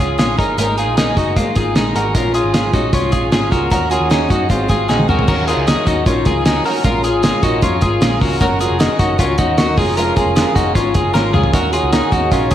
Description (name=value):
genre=jangly indie pop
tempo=153 BPM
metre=4/4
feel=straight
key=Db major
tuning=A4 = 440 Hz
part: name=picked steel-string acoustic guitar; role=accompaniment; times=0.0-12.5 s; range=F2 to Bb4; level=-20 LUFS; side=right 4 dB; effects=slapback echo
part: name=twelve-string electric guitar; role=arpeggios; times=0.0-12.5 s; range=Bb3 to Bb4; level=-17 LUFS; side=left 2 dB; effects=analog delay, slapback echo
part: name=vintage muted picked electric bass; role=bass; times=0.0-12.5 s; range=F1 to Gb2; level=-22 LUFS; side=equal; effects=none
part: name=cloth-damped thuddy drum kit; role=drums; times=0.0-12.5 s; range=crash cymbal, hi-hat, kick drum, snare drum, toms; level=-17 LUFS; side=equal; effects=none
part: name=bright reed electric piano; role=accompaniment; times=11.5-12.5 s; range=Eb4 to Db5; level=-22 LUFS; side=right 6 dB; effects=slapback echo
room=wet recital hall reverb, RT60 1.6 s, small room reverb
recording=big arena sound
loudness=-13 LUFS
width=side -11 dB against mid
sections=0.0-5.3 A section; 5.3-12.5 B section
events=drum fill 4.9-5.3, 11.1-11.5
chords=0.4 Absus2; 2.1 Bbm7; 3.7 Ebm7; 4.5 Ab7; 5.3 Ebm7; 6.8 Bbm7; 8.4 Db6/F; 11.5 Ebm7